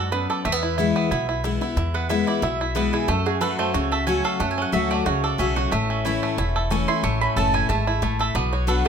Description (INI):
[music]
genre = bluegrass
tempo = 182 BPM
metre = 4/4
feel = swing 54% on 8ths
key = A major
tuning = A4 = 440 Hz
[part]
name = picked steel-string acoustic guitar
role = accompaniment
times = 0.0-8.9 s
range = E2 to F#4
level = -25 LUFS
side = left 6 dB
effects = none
[part]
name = bluegrass banjo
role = arpeggios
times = 0.0-8.9 s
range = A3 to A4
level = -25 LUFS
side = right 4 dB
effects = none
[part]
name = mandolin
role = stabs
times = 0.0-8.9 s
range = F#4 to C#6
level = -27 LUFS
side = right 4 dB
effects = none
[part]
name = upright bass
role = bass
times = 0.0-8.8 s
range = E1 to F#2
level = -26 LUFS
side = equal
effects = none
[sound]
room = light reverb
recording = close, detailed microphones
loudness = -20 LUFS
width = side -7 dB against mid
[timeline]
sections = 0.0-8.9 A section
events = mandolin solo 0.0-8.9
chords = 0.5 E; 3.1 F#m; 5.7 A; 8.4 Bm